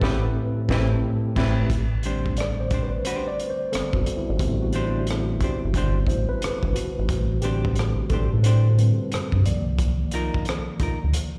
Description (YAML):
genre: R&B, neo-soul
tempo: 89 BPM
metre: 4/4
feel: swing 64% on 16ths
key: unclear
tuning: A4 = 440 Hz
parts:
  - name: hollow-body jazz guitar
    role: second line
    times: 0.0-11.0 s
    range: C4 to C5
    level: -34 LUFS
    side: equal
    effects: slapback echo
  - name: mellow tine electric piano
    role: accompaniment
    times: 0.0-11.4 s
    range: A2 to D5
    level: -29 LUFS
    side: equal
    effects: slapback echo
  - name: mellow horn section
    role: stabs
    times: 0.0-1.5 s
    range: E3 to E4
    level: -36 LUFS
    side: equal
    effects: slapback echo
  - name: rubbery square bass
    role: bass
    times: 0.0-11.1 s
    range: G1 to A2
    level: -25 LUFS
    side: equal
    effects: none
  - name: crunchy breakbeat drum kit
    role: drums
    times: 0.0-11.3 s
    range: crash cymbal, hi-hat, kick drum, rim click, snare drum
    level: -30 LUFS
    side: equal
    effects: none
room: light reverb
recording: live gig heard through the venue's PA, recital hall reverb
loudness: -23 LUFS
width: mono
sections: 0.0-1.7 A section; 1.7-11.4 B section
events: band accent 0.0-1.7; tine electric piano solo 1.7-11.4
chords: 0.0 Am9; 1.7 Am11; 9.5 Cm11